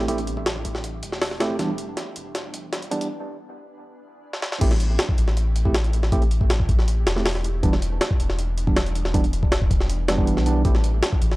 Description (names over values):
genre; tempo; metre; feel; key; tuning
drum and bass, jungle; 159 BPM; 4/4; straight; A minor; A4 = 442 Hz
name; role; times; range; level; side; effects
tine electric piano; stabs; 0.0-10.8 s; E3 to G4; -27 LUFS; right 2 dB; medium tremolo, dub echo
soft dub sub bass; bass; 0.0-11.4 s; E1 to B1; -24 LUFS; equal; none
jungle sampler-style drum kit; drums; 0.1-11.4 s; crash cymbal, hi-hat, kick drum, snare drum; -22 LUFS; equal; high-pass filter on hats, high-pass filter on snare, high-pass filter on kick, high-pass filter on cymbals, high-pass filter on room
room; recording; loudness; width
digital ambience; dry, gritty hardware recording, transformer saturation, cassette tape, high-pass filter; -20 LUFS; side -20 dB against mid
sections
0.0-4.6 A section; 4.6-11.4 B section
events
build-up 0.0-4.6; filter sweep 0.0-4.6; drum fill 1.6-3.1, 4.3; break 3.1-4.6; drop 4.6-11.4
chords
0.0 Am7; 1.6 Em7; 4.6 Am7; 7.6 Em7; 10.7 Am7